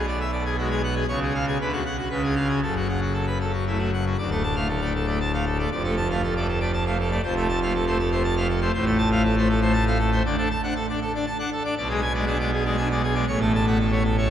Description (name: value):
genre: classical, organ toccata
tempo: 119 BPM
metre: 3/4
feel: straight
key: F# minor, D minor from 4.2 s, F# minor from 10.2 s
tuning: A4 = 440 Hz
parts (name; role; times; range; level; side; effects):
- pipe organ, full organ; solo; 0.0-14.3 s; D1 to A5; -21 LUFS; equal; none
room: wet cathedral reverb, RT60 6.3 s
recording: none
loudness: -21 LUFS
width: side -10 dB against mid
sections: 0.0-4.2 A section; 4.2-14.3 B section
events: none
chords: 0.0 G#m7b5/B; 1.1 C#; 1.6 Bm/D; 2.1 C#7; 2.6 F#m; 4.2 Dm; 5.7 Dm/F; 7.2 F; 8.7 F/A; 10.2 D; 11.8 G#dim/B; 13.3 F#m/A